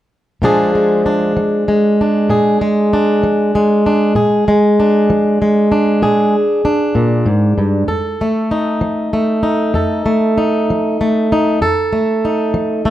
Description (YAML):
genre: blues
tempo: 64 BPM (dotted quarters)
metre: 12/8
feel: straight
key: Bb mixolydian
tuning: A4 = 441 Hz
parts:
  - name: fingerpicked plugged-in swing-style acoustic guitar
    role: accompaniment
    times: 0.4-12.9 s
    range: F2 to A4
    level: -12 LUFS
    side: equal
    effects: none
room: moderate studio reverb, RT60 0.8 s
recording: dark, warm production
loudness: -12 LUFS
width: side -13 dB against mid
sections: 0.4-12.9 A section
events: none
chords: 0.4 Bb7; 7.9 F7